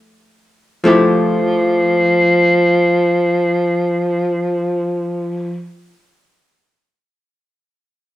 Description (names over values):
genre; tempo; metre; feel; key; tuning
jazz; free time; none; none; F major; A4 = 439 Hz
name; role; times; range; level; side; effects
archtop guitar, miked and amplified; accompaniment; 0.0-5.7 s; F3 to G4; -16 LUFS; left 1 dB; none
breathy tenor saxophone; melody; 0.9-5.6 s; F3; -14 LUFS; equal; none
room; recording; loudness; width
moderate large studio reverb, RT60 0.9 s; band playing live in one room; -13 LUFS; side -15 dB against mid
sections
0.8-7.2 A section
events
none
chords
0.0 Fmaj9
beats
free time